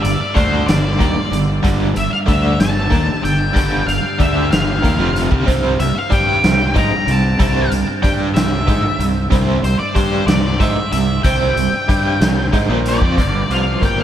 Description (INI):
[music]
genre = psychedelic rock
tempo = 62 BPM (dotted quarters)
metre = 6/8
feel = straight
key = G dorian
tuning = A4 = 441 Hz
[part]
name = octave-fuzz lead guitar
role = melody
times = 0.0-14.0 s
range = C5 to Bb5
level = -20 LUFS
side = left 1 dB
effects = distortion, analog delay
[part]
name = biting overdriven guitar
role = riff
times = 0.0-14.0 s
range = F2 to G4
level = -19 LUFS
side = right 1 dB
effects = tremolo
[part]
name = fuzz fingered electric bass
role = bass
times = 0.0-14.0 s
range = F1 to Ab2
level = -20 LUFS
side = equal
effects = overdrive
[part]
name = analog drone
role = drone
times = 0.0-13.2 s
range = G2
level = -26 LUFS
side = equal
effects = none
[part]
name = raw garage drum kit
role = drums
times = 0.0-14.0 s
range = hi-hat, kick drum, snare drum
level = -19 LUFS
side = equal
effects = none
[sound]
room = moderate huge ambient reverb, RT60 8.4 s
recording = dreamy mix soaked in reverb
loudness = -13 LUFS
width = side -10 dB against mid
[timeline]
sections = 0.0-13.2 A section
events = none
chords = 0.0 G7(no3); 5.5 Csus2; 13.2 Gm7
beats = 0.69 | 1.64 2.60 | 3.56 4.52 | 5.48 6.44 | 7.40 8.36 | 9.32 10.28 | 11.25 12.21 | 13.18